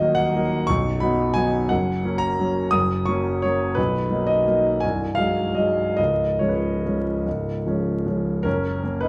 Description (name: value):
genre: classical, piano waltz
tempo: 134-183 BPM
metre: 3/4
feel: rubato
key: F# major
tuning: A4 = 440 Hz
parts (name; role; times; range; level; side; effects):
- warm grand piano; solo; 0.0-9.1 s; B0 to D#6; -22 LUFS; equal; none
room: moderate large studio reverb, RT60 1.4 s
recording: vinyl crackle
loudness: -22 LUFS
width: mono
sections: 0.0-8.5 A section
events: none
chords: 0.0 D#m; 0.7 B; 1.7 F#; 3.8 Bmaj7; 4.8 G#7/B#; 6.0 C#; 8.5 F#